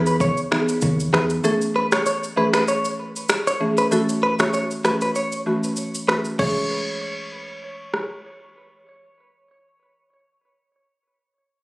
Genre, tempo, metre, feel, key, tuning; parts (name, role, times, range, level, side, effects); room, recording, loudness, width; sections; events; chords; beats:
afrobeats; 97 BPM; 4/4; swing 55% on 16ths; C# minor; A4 = 440 Hz
buzzing marimba with medium mallets; accompaniment; 0.0-10.3 s; E3 to G#4; -23 LUFS; equal
hollow-body short-scale fingered electric bass; bass; 0.0-1.4 s; D#2 to E2; -22 LUFS; equal
direct-recorded clean electric guitar; riff; 0.1-8.2 s; A4 to C#5; -24 LUFS; equal; warbly pitch drift, tape echo
afro-pop drum kit; drums; 0.1-8.1 s; crash cymbal, finger snaps, kick drum, rim click, shaker; -25 LUFS; equal
light reverb, digital ambience; recorded on a phone in the room, studio reverb, compression; -19 LUFS; side -23 dB against mid
0.0-6.4 A section; 6.4-8.9 B section
0.0 Emaj7; 1.4 Amaj7; 3.9 F#m7; 6.4 C#m
0.20 0.82 | 1.44 2.06 2.68 3.30 | 3.92 4.54 5.15 5.77 | 6.39 7.01 7.63 8.25